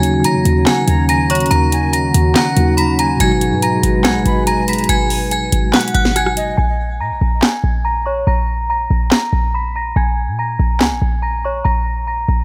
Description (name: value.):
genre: hip hop, trap.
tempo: 142 BPM.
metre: 4/4.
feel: half-time.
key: Bb phrygian.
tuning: A4 = 440 Hz.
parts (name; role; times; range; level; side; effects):
metallic FM bell; melody; 0.0-12.4 s; Db5 to Cb7; -22 LUFS; equal; chorus, phaser, low-pass filter.
mellow tine electric piano; accompaniment; 0.0-6.6 s; Cb3 to Gb4; -21 LUFS; equal; low-pass filter.
dark analog pad; sustained chords; 0.0-6.5 s; Eb3 to Cb5; -24 LUFS; equal; chorus.
short 808-style bass; bass; 0.0-12.4 s; Ab1 to Eb3; -20 LUFS; equal; none.
trap drum kit; drums; 0.0-10.9 s; handclaps, hi-hat, rim click, snare drum; -19 LUFS; equal; none.
jazz flute; second line; 0.7-6.6 s; Eb5 to Cb6; -28 LUFS; equal; delay.
room: little or no reverb.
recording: none.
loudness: -16 LUFS.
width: mono.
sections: 0.0-6.6 A section; 6.6-12.4 B section.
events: break 6.6-12.4.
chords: 0.0 Ebm7; 3.2 Abm7; 6.6 Bb7(no3).